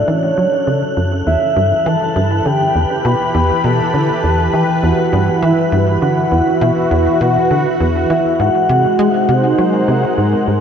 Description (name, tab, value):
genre	ambient, sequencer-driven space music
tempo	101 BPM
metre	4/4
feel	straight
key	unclear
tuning	A4 = 441 Hz
part	soft octave-layered synth lead	melody	0.0-10.2 s	C#5 to B5	-17 LUFS	left 1 dB	chorus, phaser, tape echo
part	sweeping resonant pad	sustained chords	0.0-10.6 s	C#3 to B5	-17 LUFS	right 1 dB	chorus
part	tight sequencer bass	riff	0.0-10.6 s	E2 to G#3	-17 LUFS	equal	lush chorus, tape echo
part	wind-like tuned noise texture	texture	0.0-10.6 s	F#6	-30 LUFS	right 1 dB	built-in reverb, lush chorus
room	wet lush hall reverb, RT60 2.8 s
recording	dreamy mix soaked in reverb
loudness	-12 LUFS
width	side -7 dB against mid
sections	0.0-10.6 A section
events	fade-in on analog synth pad 0.0-10.6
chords	0.0 F#m; 1.3 Em; 8.4 G#7